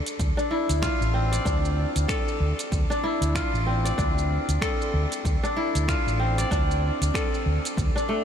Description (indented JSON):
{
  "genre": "organic downtempo",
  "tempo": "95 BPM",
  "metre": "4/4",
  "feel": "swing 58% on 16ths",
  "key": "D minor",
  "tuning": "A4 = 440 Hz",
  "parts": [
    { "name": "kora", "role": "arpeggios", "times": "0.0-8.2 s", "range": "A3 to D5", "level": "-26 LUFS", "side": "left 1 dB", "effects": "ping-pong delay" },
    { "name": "afro-pop drum kit", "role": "drums", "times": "0.1-8.1 s", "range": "finger snaps, hi-hat, shaker", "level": "-34 LUFS", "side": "right 2 dB", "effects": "small room ambience" },
    { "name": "fretless electric bass", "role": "bass", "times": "0.2-7.9 s", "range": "A1 to D2", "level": "-25 LUFS", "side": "equal", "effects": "sidechain pumping" },
    { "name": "electronic kick drum", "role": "drums", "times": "0.2-7.9 s", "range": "none", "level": "-28 LUFS", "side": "equal", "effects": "overdrive, small room ambience" }
  ],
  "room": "moderate huge ambient reverb, RT60 7.4 s",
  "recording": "dreamy mix soaked in reverb",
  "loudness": "-22 LUFS",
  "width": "side -8 dB against mid",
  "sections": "0.0-8.2 A section",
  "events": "none",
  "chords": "0.0 Dm9"
}